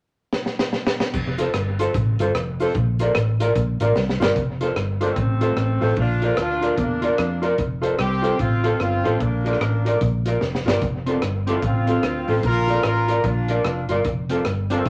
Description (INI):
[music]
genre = ska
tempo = 149 BPM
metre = 4/4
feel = swing 62% on 8ths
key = F major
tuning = A4 = 440 Hz
[part]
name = crunchy breakbeat drum kit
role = drums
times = 0.3-14.9 s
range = crash cymbal, hi-hat, kick drum, rim click, snare drum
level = -29 LUFS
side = equal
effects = dub echo
[part]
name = fingered electric bass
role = bass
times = 1.1-14.9 s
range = F1 to F2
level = -26 LUFS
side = equal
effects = none
[part]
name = cabasa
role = percussion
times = 1.1-4.3 s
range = none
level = -55 LUFS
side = equal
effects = none
[part]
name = vintage hollow-body jazz guitar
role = accompaniment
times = 1.4-14.8 s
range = C4 to D5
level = -26 LUFS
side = equal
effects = dub echo
[part]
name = warm horn section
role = melody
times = 5.0-14.9 s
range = A3 to Bb4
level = -27 LUFS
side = equal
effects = none
[sound]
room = moderate club reverb, RT60 0.7 s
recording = none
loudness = -21 LUFS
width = mono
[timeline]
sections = 0.0-1.1 A section; 1.1-4.4 B section; 4.4-14.9 C section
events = drum fill 0.3-1.1, 4.0-4.4, 10.4-10.8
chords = 0.0 N.C.; 1.1 F; 2.7 Bb; 4.4 F; 6.0 Bb; 7.6 F; 9.2 Bb; 10.8 F; 12.4 Bb; 14.1 F